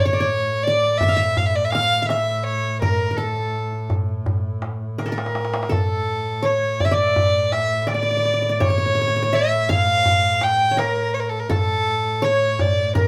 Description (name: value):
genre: Arabic maqam ensemble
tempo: 83 BPM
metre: 4/4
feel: straight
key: A maqam hijaz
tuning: A4 = 440 Hz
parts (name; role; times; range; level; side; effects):
- rich violin; melody; 0.0-13.1 s; A4 to G5; -23 LUFS; equal; none
- qanun; second line; 0.0-13.1 s; A4 to F5; -27 LUFS; equal; none
- clear double bass; drone; 0.0-13.1 s; A2; -30 LUFS; equal; none
- darbuka; percussion; 0.8-13.1 s; none; -26 LUFS; equal; none
room: moderate studio reverb, RT60 0.5 s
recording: none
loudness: -20 LUFS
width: mono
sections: 0.0-13.1 A section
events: drum fill 5.0-5.7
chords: none